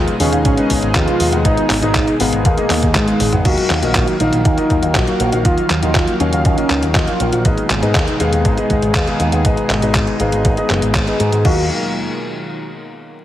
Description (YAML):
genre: italo disco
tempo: 120 BPM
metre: 4/4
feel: straight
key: Eb minor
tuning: A4 = 444 Hz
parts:
  - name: wide unison lead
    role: melody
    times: 0.0-7.4, 11.5-11.6 s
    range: Ab3 to Gb4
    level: -19 LUFS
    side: right 1 dB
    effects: digital delay
  - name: lush unison pad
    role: sustained chords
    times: 0.0-11.7 s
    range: Cb3 to F5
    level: -22 LUFS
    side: equal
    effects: chorus
  - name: warm concert grand piano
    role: stabs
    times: 0.0-11.6 s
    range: Eb3 to Gb5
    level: -21 LUFS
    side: left 2 dB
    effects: low-pass filter, digital delay
  - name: picked electric bass with an envelope filter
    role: bass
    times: 0.0-11.7 s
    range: Gb1 to Ab2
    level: -19 LUFS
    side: equal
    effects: none
  - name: detuned 8-bit digital drum machine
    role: drums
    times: 0.1-11.6 s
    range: crash cymbal, handclaps, hi-hat, toms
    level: -21 LUFS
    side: equal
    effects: none
  - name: electronic kick drum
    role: drums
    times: 0.5-11.6 s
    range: none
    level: -18 LUFS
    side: equal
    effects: none
room: light reverb, digital ambience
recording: heavily compressed radio sound, multiband compression, vinyl crackle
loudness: -13 LUFS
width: side -12 dB against mid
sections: 0.0-3.5 A section; 3.5-11.5 B section; 11.5-13.2 C section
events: drum fill 3.2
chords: 0.0 Abm; 3.5 Ebmadd9; 7.5 Abm; 11.5 Ebmadd9